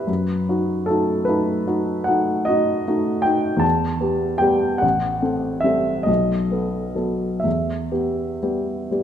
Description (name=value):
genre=classical, romantic nocturne for solo piano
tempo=40-52 BPM (dotted quarters)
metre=9/8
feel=rubato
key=unclear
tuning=A4 = 439 Hz
part: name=warm baby grand piano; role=solo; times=0.0-9.0 s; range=A1 to A5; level=-19 LUFS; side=equal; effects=none
room=wet recital hall reverb, RT60 1.4 s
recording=minimal, uncompressed stereo recording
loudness=-18 LUFS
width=side -9 dB against mid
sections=0.0-9.0 A section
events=none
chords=0.1 B7/F#; 3.6 Em; 4.8 Am7; 6.1 B7; 7.5 Em